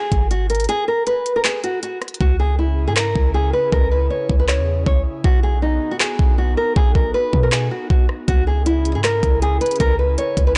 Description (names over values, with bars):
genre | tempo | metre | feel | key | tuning
hip hop, trap | 158 BPM | 4/4 | half-time | C# dorian | A4 = 438 Hz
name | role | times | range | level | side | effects
nylon-string guitar | melody | 0.0-10.5 s | D#4 to C#5 | -23 LUFS | equal | none
clean 808-style bass | bass | 0.1-10.6 s | G#1 to B2 | -21 LUFS | equal | none
trap drum kit | drums | 0.1-10.5 s | handclaps, hi-hat, kick drum, rim click | -21 LUFS | equal | none
airy breathy pad | sustained chords | 2.2-10.6 s | C#3 to G#4 | -33 LUFS | equal | chorus
room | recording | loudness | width
little or no reverb | blown-out, overdriven recording, overdrive, nothing above 10.6 kHz | -18 LUFS | mono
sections
0.0-10.6 A section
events
kick muted 0.7-2.2; hi-hats muted 2.2-8.3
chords
0.0 N.C.; 2.2 C#m; 5.2 B; 8.3 C#m